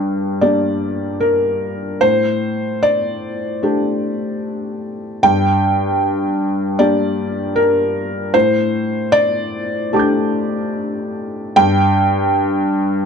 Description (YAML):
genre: neoclassical minimalist piano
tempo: 76 BPM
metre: 4/4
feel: rubato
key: unclear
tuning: A4 = 440 Hz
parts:
  - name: felt-muted upright piano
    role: solo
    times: 0.0-13.1 s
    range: G2 to G6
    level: -15 LUFS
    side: equal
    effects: none
room: moderate studio reverb, RT60 0.8 s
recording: nothing above 10.7 kHz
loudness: -15 LUFS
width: side -6 dB against mid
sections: 0.0-13.1 A section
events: none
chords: 0.0 Gm; 2.0 Dsus4/A; 5.2 Gm; 8.3 Dsus4/A; 11.6 N.C.